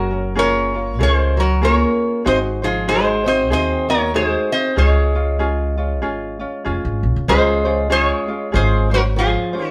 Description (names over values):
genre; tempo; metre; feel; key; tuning
Hawaiian; 96 BPM; 4/4; swing 59% on 8ths; Db major; A4 = 444 Hz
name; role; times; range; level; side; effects
metal-body resonator slide guitar; melody; 0.0-9.7 s; F4 to Eb5; -21 LUFS; equal; none
fingerpicked acoustic archtop guitar; second line; 0.0-9.7 s; F3 to C4; -25 LUFS; equal; none
ukulele; accompaniment; 0.0-9.7 s; Db4 to C5; -26 LUFS; equal; none
upright bass; bass; 0.0-9.4 s; F1 to Eb2; -22 LUFS; equal; none
room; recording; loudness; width
moderate studio reverb, RT60 0.7 s; band playing live in one room; -18 LUFS; mono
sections
0.0-7.3 A section; 7.3-9.7 B section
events
none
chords
0.0 Gbmaj9; 2.3 Ab7; 4.8 Db; 7.3 Dbmaj7